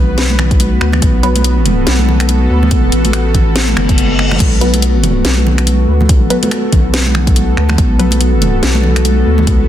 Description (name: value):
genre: deep dubstep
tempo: 142 BPM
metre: 4/4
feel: swing 58% on 16ths, half-time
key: B minor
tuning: A4 = 440 Hz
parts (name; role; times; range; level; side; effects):
- bowed-like drone; sustained chords; 0.0-9.7 s; B3 to B4; -17 LUFS; left 2 dB; built-in reverb
- saturated sub bass; bass; 0.0-9.7 s; F#1 to D2; -13 LUFS; equal; none
- garage drum kit; drums; 0.2-9.6 s; crash cymbal, finger snaps, hi-hat, snare drum; -18 LUFS; left 1 dB; small room reverb
- congas; percussion; 0.3-9.5 s; none; -19 LUFS; right 3 dB; dub echo
- electronic kick drum; drums; 0.5-9.6 s; none; -12 LUFS; equal; small room reverb
- filtered dub chord stab; stabs; 1.2-1.3, 4.6-8.1 s; F#3 to B4; -21 LUFS; left 1 dB; phaser, dub echo
- reverse cymbal; sound effects; 3.8-4.4 s; none; -22 LUFS; left 3 dB; none
room: light reverb, digital ambience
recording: dense, heavily limited modern master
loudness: -9 LUFS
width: side -11 dB against mid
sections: 0.0-9.7 A section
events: reverse cymbal 3.8-4.4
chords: 0.0 B5